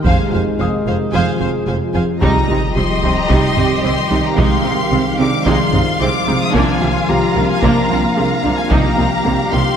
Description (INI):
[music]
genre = cinematic, hybrid orchestral and electronic film score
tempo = 111 BPM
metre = 4/4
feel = straight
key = C minor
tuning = A4 = 440 Hz
[part]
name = deep dark ambient pad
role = sustained chords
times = 0.0-9.8 s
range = Eb3 to Eb5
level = -21 LUFS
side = equal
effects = chorus, built-in reverb
[part]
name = mellow French horn section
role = sustained chords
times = 0.0-9.8 s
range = Eb3 to G4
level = -26 LUFS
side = left 4 dB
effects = none
[part]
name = dark grand piano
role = texture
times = 0.0-9.8 s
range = G3 to Bb6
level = -28 LUFS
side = left 4 dB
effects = ping-pong delay
[part]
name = warm symphonic violin section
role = melody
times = 0.1-9.8 s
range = Ab5 to Eb6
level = -22 LUFS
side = left 3 dB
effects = none
[part]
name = warm symphonic violin section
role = second line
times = 0.1-9.8 s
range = F4 to F5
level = -22 LUFS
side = left 1 dB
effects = none
[part]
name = rich symphonic viola section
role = accompaniment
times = 0.1-9.6 s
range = G3 to C5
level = -22 LUFS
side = right 1 dB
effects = none
[part]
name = soft round pluck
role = arpeggios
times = 0.1-9.7 s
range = C3 to Ab4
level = -25 LUFS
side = right 3 dB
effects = none
[part]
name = rich chamber double bass section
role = bass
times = 0.1-9.6 s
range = F1 to C2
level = -22 LUFS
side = right 3 dB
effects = none
[part]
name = rich symphonic cello section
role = bass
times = 0.1-9.6 s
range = F2 to C3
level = -22 LUFS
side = right 3 dB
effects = none
[part]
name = taiko ensemble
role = drums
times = 0.1-9.2 s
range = none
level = -20 LUFS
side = equal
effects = none
[part]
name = sub drop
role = sound effects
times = 2.3-4.4 s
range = none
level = -24 LUFS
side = equal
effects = none
[sound]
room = wet scoring stage reverb, RT60 1.9 s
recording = none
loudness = -13 LUFS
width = side -8 dB against mid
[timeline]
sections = 0.0-2.2 A section; 2.2-9.8 B section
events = impact 2.2-4.4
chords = 0.1 Fm; 2.2 Cm; 4.4 Fm7/C; 6.5 Bb7/C; 8.7 Eb/C